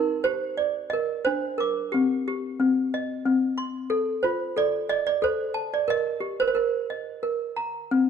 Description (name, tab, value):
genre	children's music, lullaby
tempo	90 BPM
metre	3/4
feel	rubato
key	Eb major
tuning	A4 = 440 Hz
part	toy piano	solo	0.0-8.1 s	C4 to D6	-23 LUFS	right 1 dB	none
room	moderate recital hall reverb, RT60 1.6 s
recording	dark, warm production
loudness	-23 LUFS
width	side -7 dB against mid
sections	0.0-8.1 A section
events	none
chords	0.0 Ebmaj7; 1.9 Cm; 3.9 F6; 5.9 Eb; 7.2 N.C.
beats	0.59 1.26 | 1.93 2.60 3.25 | 3.91 4.57 5.22 | 5.88 6.55 7.23 | 7.91